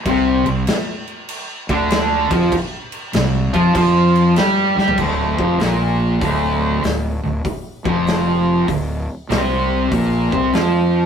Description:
stoner and doom metal; 97 BPM; 4/4; swing 66% on 8ths; D minor; A4 = 439 Hz
fuzz guitar; riff; 0.1-11.1 s; D2 to G4; -16 LUFS; equal; distortion
fuzz fingered electric bass; bass; 0.1-11.1 s; D1 to G2; -21 LUFS; left 1 dB; overdrive
big rock drum kit; drums; 0.1-10.7 s; crash cymbal, hi-hat, kick drum, snare drum, toms; -23 LUFS; left 1 dB
moderate small room reverb, RT60 0.5 s; rough rehearsal-room recording, tube saturation; -15 LUFS; side -7 dB against mid
0.0-5.0 A section; 5.0-11.1 B section
drum fill 4.7-5.0
0.1 C5; 5.0 Dm; 9.9 Bb5

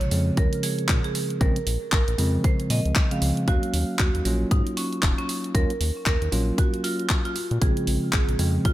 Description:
deep house; 116 BPM; 4/4; swing 59% on 16ths; Eb minor; A4 = 440 Hz
marimba with hard mallets; melody; 0.0-8.7 s; Db4 to F5; -30 LUFS; right 2 dB; vintage 12-bit sampler grit, dub echo
bell-like tine electric piano; stabs; 0.0-8.7 s; Db3 to F5; -28 LUFS; equal; sidechain pumping, digital delay
round analog bass; bass; 0.0-8.7 s; Eb1 to Bb2; -25 LUFS; equal; sidechain pumping
house drum kit; drums; 0.0-8.7 s; handclaps, hi-hat; -29 LUFS; equal
electronic kick drum; drums; 0.4-8.7 s; -22 LUFS; equal
digital ambience; -21 LUFS; side -15 dB against mid
0.0-8.7 A section
0.0 Bbm7; 3.5 Ebm7; 7.4 Bbm7

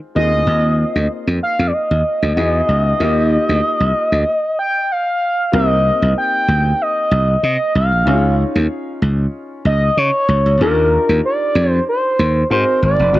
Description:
polished 1980s jazz-funk pop; 95 BPM; 4/4; swing 54% on 16ths; Eb major; A4 = 440 Hz
warm grand piano; accompaniment; 0.0-13.2 s; Ab3 to Db5; -24 LUFS; left 2 dB; wide subtle chorus, cassette tape
expressive synth lead; melody; 0.2-13.2 s; Bb4 to G5; -16 LUFS; equal; chorus, cassette tape
slap bass; bass; 0.2-13.2 s; F1 to Db3; -15 LUFS; equal
light reverb, small room ambience; home recording on cassette; -13 LUFS; side -16 dB against mid
0.0-5.5 A section; 5.5-13.2 B section
stop 4.3-5.5
0.2 Bb7sus4; 2.4 Emaj9; 3.0 Ebadd9; 4.9 N.C.; 5.5 Cm7; 8.1 Db; 10.6 Ebmaj9; 12.5 Ab9

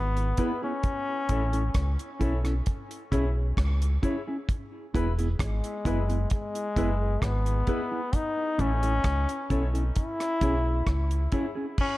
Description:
roots reggae; 66 BPM; 4/4; straight; A4 = 439 Hz
brilliant trombone; melody; 0.0-12.0 s; G#3 to E4; -31 LUFS; left 2 dB; dub echo
deep dub fingered electric bass; bass; 0.0-11.3 s; E1 to C#2; -26 LUFS; equal
deep reggae drum kit; drums; 0.2-12.0 s; crash cymbal, hi-hat, kick drum, rim click; -29 LUFS; equal
mellow electric guitar; accompaniment; 0.4-11.7 s; B3 to A4; -34 LUFS; right 1 dB; spring reverb, dub echo
warm upright piano; stabs; 0.4-11.5 s; E4 to C#5; -37 LUFS; left 3 dB
little or no reverb; dark, warm production; -25 LUFS; side -17 dB against mid
0.0-11.8 A section
0.0 E; 0.8 A; 2.7 C#m; 4.5 E; 8.1 A; 10.0 C#m

